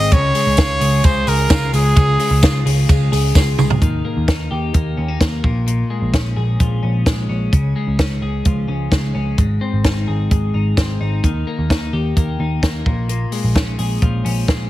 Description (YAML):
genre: jangly indie pop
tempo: 129 BPM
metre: 4/4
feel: straight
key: unclear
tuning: A4 = 440 Hz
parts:
  - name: bright trumpet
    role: melody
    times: 0.0-2.6 s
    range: Ab4 to Eb5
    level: -19 LUFS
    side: equal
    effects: none
  - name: twelve-string electric guitar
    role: arpeggios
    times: 0.0-14.7 s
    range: Ab2 to Ab4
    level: -22 LUFS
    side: left 2 dB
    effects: none
  - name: vintage muted picked electric bass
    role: bass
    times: 0.0-14.7 s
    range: Ab1 to Eb2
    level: -19 LUFS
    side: equal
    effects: none
  - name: compact cocktail drum kit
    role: drums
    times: 0.1-14.6 s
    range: hi-hat, kick drum, ride cymbal, snare drum, toms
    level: -17 LUFS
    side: equal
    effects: none
  - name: tambourine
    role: percussion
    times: 0.1-3.7 s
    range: none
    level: -32 LUFS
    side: right 10 dB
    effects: none
room: studio reverb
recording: heavily compressed radio sound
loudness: -14 LUFS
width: side -15 dB against mid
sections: 0.0-3.8 A section; 3.8-14.7 B section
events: drum fill 3.4-3.8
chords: 0.1 Db; 3.8 Eb; 5.4 Bbm7; 7.5 Db; 9.4 Ab; 11.2 Eb; 12.9 Bbm7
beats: | 0.12 0.58 1.04 1.50 | 1.96 2.42 2.89 3.35 | 3.81 4.28 4.74 5.21 | 5.67 6.13 6.60 7.06 | 7.53 7.99 8.46 8.92 | 9.38 9.85 10.31 10.78 | 11.24 11.70 12.17 12.63 | 13.09 13.56 14.02 14.48